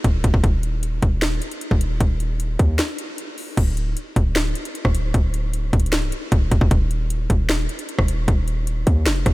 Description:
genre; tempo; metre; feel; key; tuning
hip hop, trap; 153 BPM; 4/4; half-time; unclear; A4 = 440 Hz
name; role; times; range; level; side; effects
hard-hitting 808-style bass; bass; 0.0-9.3 s; C1 to Eb2; -21 LUFS; equal; none
trap drum kit; drums; 0.0-9.3 s; crash cymbal, hi-hat, kick drum, rim click, snare drum; -20 LUFS; equal; none
room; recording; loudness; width
little or no reverb; none; -18 LUFS; side -19 dB against mid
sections
0.0-3.6 A section; 3.6-9.3 B section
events
break 2.8-3.6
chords
none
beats
0.04 | 0.44 0.83 1.22 1.61 | 2.00 2.40 2.79 3.18 | 3.57 3.97 4.36 4.75 | 5.14 5.54 5.93 6.32 | 6.71 7.10 7.50 7.89 | 8.28 8.67 9.06

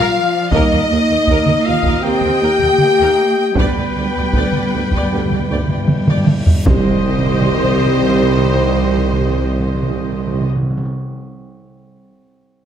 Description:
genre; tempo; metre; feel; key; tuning
cinematic, epic orchestral film score; 79 BPM; 4/4; straight; C minor; A4 = 440 Hz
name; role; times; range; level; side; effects
warm symphonic violin section; melody; 0.0-10.5 s; B4 to G5; -24 LUFS; left 3 dB; none
rich studio violin section; second line; 0.0-10.5 s; B4 to G5; -27 LUFS; left 3 dB; none
warm symphonic viola section; accompaniment; 0.0-10.5 s; G4 to G5; -24 LUFS; equal; none
dark French horn section; sustained chords; 0.0-10.5 s; B3 to G4; -20 LUFS; left 4 dB; none
warm trumpet section; stabs; 0.0-10.5 s; B4 to G5; -24 LUFS; right 1 dB; none
warm symphonic cello section; bass; 0.0-10.5 s; C2 to C4; -22 LUFS; right 3 dB; none
warm symphonic double bass section; bass; 0.0-10.5 s; C2 to Eb2; -22 LUFS; right 2 dB; none
mellow trombone section; sustained chords; 0.5-10.5 s; D3 to Bb3; -25 LUFS; right 3 dB; none
clear tuba; bass; 0.5-10.5 s; C2 to Eb2; -23 LUFS; right 5 dB; none
taiko ensemble; drums; 0.5-8.1 s; none; -16 LUFS; equal; none
timpani; percussion; 3.6-10.9 s; G2 to C3; -22 LUFS; equal; none
reverse cymbal and impact; sound effects; 6.2-11.0 s; none; -28 LUFS; equal; none
room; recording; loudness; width
light reverb; none; -13 LUFS; side -9 dB against mid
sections
0.0-6.7 A section; 6.7-9.7 B section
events
timpani fill 3.6-6.7; drum fill 5.9-6.7; reverse cymbal 6.2-6.7; impact 6.7-9.7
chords
0.0 Bb; 0.5 Eb; 3.6 G/D; 6.7 Cm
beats
| 0.54 1.29 2.05 2.81 | 3.58 4.35 5.13 5.90 | 6.67 7.43 8.19 8.95

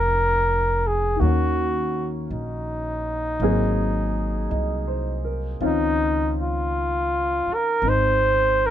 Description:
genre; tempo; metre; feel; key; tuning
jazz ballad; 54 BPM; 4/4; swing 69% on 8ths; unclear; A4 = 441 Hz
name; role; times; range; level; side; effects
warm flugelhorn; melody; 0.0-8.7 s; Eb4 to C5; -22 LUFS; equal; none
warm grand piano; accompaniment; 0.0-8.7 s; Eb3 to Eb5; -27 LUFS; left 2 dB; none
upright bass; bass; 0.0-8.7 s; F1 to Eb2; -25 LUFS; equal; none
room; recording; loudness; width
little or no reverb; close, detailed microphones; -20 LUFS; side -11 dB against mid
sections
0.0-8.7 A section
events
none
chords
0.0 Bbm11; 1.2 Ebm7; 3.4 Ab9; 5.6 Dbmaj9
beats
0.10 | 1.20 2.30 3.40 4.50 | 5.60 6.70 7.82

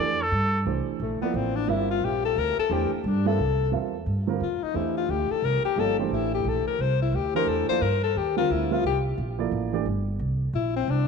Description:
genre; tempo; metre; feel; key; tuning
modal jazz; 176 BPM; 3/4; swing 63% on 8ths; C mixolydian; A4 = 443 Hz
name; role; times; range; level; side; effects
clear trumpet; melody; 0.0-0.6 s; A4 to D5; -27 LUFS; right 1 dB; none
warm upright piano; accompaniment; 0.0-9.8 s; D3 to E5; -30 LUFS; right 12 dB; none
upright bass; bass; 0.0-11.1 s; G1 to G2; -28 LUFS; right 1 dB; none
clear alto saxophone; second line; 1.0-11.1 s; A3 to C5; -26 LUFS; left 9 dB; none
room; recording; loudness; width
moderate echo chamber reverb, RT60 2.4 s; 1960s-style stereo with parts hard left and right; -23 LUFS; side -5 dB against mid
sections
0.7-11.1 A section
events
alto saxophone solo 0.7-11.1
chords
0.0 C (rootless); 0.7 C7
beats
0.32 | 0.66 1.00 1.34 | 1.68 2.02 2.36 | 2.70 3.04 3.38 | 3.72 4.07 4.41 | 4.75 5.09 5.43 | 5.77 6.11 6.45 | 6.79 7.13 7.47 | 7.81 8.15 8.49 | 8.84 9.18 9.52 | 9.86 10.20 10.54 | 10.88

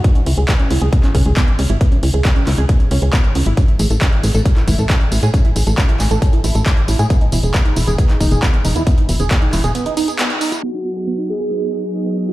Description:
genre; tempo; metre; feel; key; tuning
uplifting trance; 136 BPM; 4/4; straight; C# minor; A4 = 440 Hz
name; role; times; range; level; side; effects
tight sequenced synth; arpeggios; 0.0-12.3 s; B3 to A4; -23 LUFS; right 3 dB; chorus, vintage 12-bit sampler grit, sidechain pumping, dub echo
electronic kick drum; drums; 0.0-9.4 s; none; -14 LUFS; equal; none
punchy analog drum machine; drums; 0.0-12.3 s; handclaps, hi-hat, tambourine; -23 LUFS; equal; overdrive, low-pass filter on hats, low-pass filter on snare, low-pass filter on cymbals, low-pass filter on perc, low-pass filter on room
tight sequencer bass; bass; 0.3-9.7 s; E1 to A2; -15 LUFS; equal; tube saturation, sidechain pumping
warm velvety synth lead; second line; 10.6-11.9 s; F#4 to G#4; -22 LUFS; right 2 dB; chorus, ping-pong delay
analog string pad; sustained chords; 10.7-12.3 s; F#3 to G#5; -22 LUFS; equal; ensemble chorus, sidechain pumping
downlifter; sound effects; 11.0-12.3 s; none; -47 LUFS; right 1 dB; none
room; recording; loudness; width
light reverb, digital ambience; played on a big sound system in a bare room, stone room reverb, low-pass filter; -13 LUFS; side -17 dB against mid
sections
0.0-10.6 A section; 10.6-12.3 B section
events
break 9.8-10.6; band accent 10.2; filter sweep 10.6-12.3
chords
0.0 C#m7; 3.6 Amaj7; 7.1 Emaj7; 10.6 G#m7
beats
| 0.04 0.48 0.93 1.37 | 1.81 2.25 2.69 3.13 | 3.57 4.01 4.46 4.90 | 5.34 5.78 6.22 6.66 | 7.10 7.54 7.99 8.43 | 8.87 9.31 9.75 10.19 | 10.63 11.07 11.51 11.96

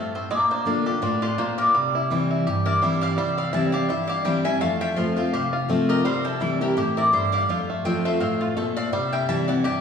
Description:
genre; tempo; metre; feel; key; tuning
bluegrass; 167 BPM; 4/4; swing 55% on 8ths; C mixolydian; A4 = 440 Hz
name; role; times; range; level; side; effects
mandolin; melody; 0.0-9.8 s; A4 to A5; -26 LUFS; equal; none
picked steel-string acoustic guitar; accompaniment; 0.0-9.8 s; F2 to F4; -24 LUFS; left 1 dB; none
bluegrass banjo; arpeggios; 0.0-9.8 s; E3 to G4; -27 LUFS; equal; none
lap resonator guitar; second line; 1.0-9.8 s; E4 to F5; -30 LUFS; left 2 dB; none
room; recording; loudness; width
wet recital hall reverb, RT60 1.6 s; recorded in a church or concert hall, small room ambience; -20 LUFS; side -7 dB against mid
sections
0.0-9.8 A section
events
none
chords
0.3 Bb; 1.7 C; 4.6 F; 6.0 C; 7.5 F; 8.9 C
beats
| 0.31 0.67 1.02 1.38 | 1.74 2.10 2.46 2.81 | 3.17 3.53 3.89 4.25 | 4.61 4.97 5.33 5.69 | 6.05 6.41 6.77 7.13 | 7.49 7.85 8.21 8.56 | 8.92 9.28 9.64

